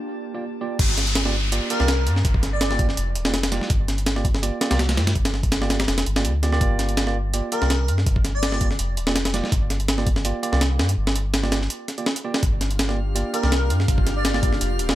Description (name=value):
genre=drum and bass, jungle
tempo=165 BPM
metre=4/4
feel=swing 53% on 16ths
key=G minor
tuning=A4 = 443 Hz
part: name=ethereal airy pad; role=sustained chords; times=0.0-0.8, 12.6-14.9 s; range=Bb3 to G4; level=-33 LUFS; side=equal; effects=ensemble chorus, built-in reverb, vintage 12-bit sampler grit
part: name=drifting glass-harmonics texture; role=texture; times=0.0-0.8, 12.7-14.9 s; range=D5 to F6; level=-38 LUFS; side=left 2 dB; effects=chorus, built-in reverb
part: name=tine electric piano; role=stabs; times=0.3-14.9 s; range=Bb3 to D5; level=-29 LUFS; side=right 4 dB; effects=dub echo
part: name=soft dub sub bass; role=bass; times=0.8-14.9 s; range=D1 to G2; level=-23 LUFS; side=equal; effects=tube saturation
part: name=breakbeat sampler-style drum kit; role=drums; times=0.8-14.9 s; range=crash cymbal, hi-hat, kick drum, snare drum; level=-22 LUFS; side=equal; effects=none
part: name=downlifter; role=sound effects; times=0.8-3.7 s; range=none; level=-29 LUFS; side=equal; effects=none
part: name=airy dreamy lead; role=melody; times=1.7-2.8, 7.5-8.6, 13.3-14.4 s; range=Bb4 to D5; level=-29 LUFS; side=left 1 dB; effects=chorus, dub echo
room=little or no reverb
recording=none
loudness=-19 LUFS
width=side -14 dB against mid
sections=0.8-14.9 A section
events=drop 0.8-14.9; break 11.7-12.4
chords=0.0 Gm7